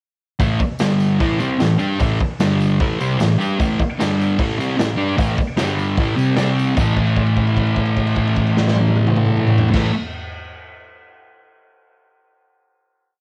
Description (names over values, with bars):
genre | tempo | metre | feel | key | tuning
garage rock duo or trio | 150 BPM | 4/4 | straight | A minor | A4 = 439 Hz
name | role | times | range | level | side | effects
fuzz guitar | riff | 0.4-9.9 s | G2 to G4 | -19 LUFS | equal | distortion, cassette tape
raw garage drum kit | drums | 0.4-9.8 s | crash cymbal, hi-hat, kick drum, snare drum, toms | -25 LUFS | equal | cassette tape
tambourine | percussion | 0.4-7.0 s | none | -44 LUFS | equal | none
room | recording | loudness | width
small room ambience | home recording on cassette | -18 LUFS | mono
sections
0.4-6.8 riff; 6.8-10.0 final chord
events
held note 6.8-9.7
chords
0.4 A5; 0.8 G5; 1.2 Am; 2.4 G5; 2.8 Am; 4.0 G5; 4.4 Am; 5.6 G5; 6.0 Am; 6.4 C5; 6.8 A5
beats
| 0.40 0.80 1.20 1.60 | 2.00 2.40 2.80 3.20 | 3.59 3.99 4.39 4.79 | 5.18 5.58 5.98 6.38 | 6.78 7.18 7.58 7.98 | 8.38 8.78 9.18 9.58